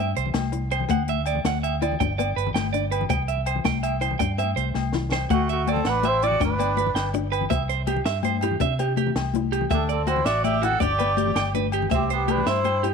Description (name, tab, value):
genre	highlife guitar band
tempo	109 BPM (dotted quarters)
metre	12/8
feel	straight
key	unclear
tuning	A4 = 441 Hz
part	nylon-string guitar	accompaniment	0.0-12.9 s	A3 to E4	-31 LUFS	left 13 dB	none
part	clean electric guitar	arpeggios	0.0-12.9 s	F#4 to G5	-27 LUFS	right 14 dB	slapback echo
part	fingered electric bass	bass	0.0-12.9 s	G1 to C3	-27 LUFS	equal	none
part	compact cocktail drum kit	drums	0.2-12.9 s	hi-hat, kick drum, snare drum	-30 LUFS	equal	none
part	agogo bells	percussion	0.3-12.9 s	none	-33 LUFS	left 14 dB	none
part	congas	percussion	0.3-12.7 s	none	-29 LUFS	left 15 dB	none
part	trumpet with bucket mute	melody	5.3-12.8 s	F#4 to F#5	-25 LUFS	equal	none
part	raspy tenor saxophone	second line	5.3-12.8 s	A3 to A4	-32 LUFS	right 14 dB	none
room	light reverb, small room ambience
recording	1960s-style stereo with parts hard left and right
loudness	-21 LUFS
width	side -5 dB against mid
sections	0.0-5.3 A section; 5.3-12.9 B section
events	drum fill 4.4-5.3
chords	0.0 C; 0.9 Dadd9; 2.0 G; 3.1 C; 5.3 Dadd9; 6.4 G; 7.5 C; 9.7 Dadd9; 10.8 G; 11.9 C